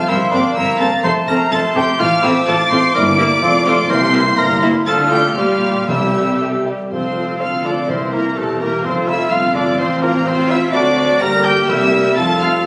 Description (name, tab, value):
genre	quick classical-period movement for symphony orchestra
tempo	125 BPM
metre	2/4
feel	rubato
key	F major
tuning	A4 = 437 Hz
part	rich studio violin section	melody	0.0-12.7 s	A5 to D7	-26 LUFS	equal	none
part	rich studio violin section	second line	0.0-12.7 s	A4 to D6	-27 LUFS	equal	none
part	silver concert flute	second line	0.0-12.5 s	A4 to F6	-23 LUFS	equal	none
part	warm clarinet	second line	0.0-12.7 s	G4 to C5	-28 LUFS	equal	none
part	warm cor anglais	second line	0.0-12.5 s	A3 to D5	-24 LUFS	equal	none
part	warm bassoon	accompaniment	0.0-12.7 s	E3 to Bb3	-26 LUFS	equal	none
part	rich studio viola section	accompaniment	0.1-12.7 s	G3 to Bb4	-24 LUFS	equal	none
part	clear studio cello section	bass	0.1-12.7 s	C2 to D3	-27 LUFS	equal	none
part	rich studio double bass section	bass	0.1-12.7 s	E1 to D2	-28 LUFS	equal	none
part	dark French horn section	sustained chords	0.3-12.7 s	G3 to G4	-24 LUFS	equal	none
part	timpani	percussion	3.9-9.5, 11.7-12.1 s	F2 to C3	-30 LUFS	equal	none
room	moderate scoring stage reverb, RT60 2.1 s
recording	recorded on a phone in the room, club reverb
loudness	-15 LUFS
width	mono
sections	0.0-6.9 A section; 6.9-12.7 B section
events	none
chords	0.1 C5/G; 1.0 F; 2.0 F/A; 2.9 Edim/G; 3.4 F; 3.9 C7; 4.9 Dm; 5.4 Gm/Bb; 5.9 C; 6.9 F; 7.9 C7; 8.8 F; 9.8 F/A; 10.7 D7; 11.2 Gm; 11.7 C7; 12.2 F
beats	| 0.09 0.57 | 1.04 1.52 | 2.00 2.47 | 2.94 3.42 | 3.90 4.38 | 4.87 5.37 | 5.88 6.41 | 6.92 7.41 | 7.89 8.37 | 8.85 9.32 | 9.79 10.27 | 10.74 11.21 | 11.69 12.18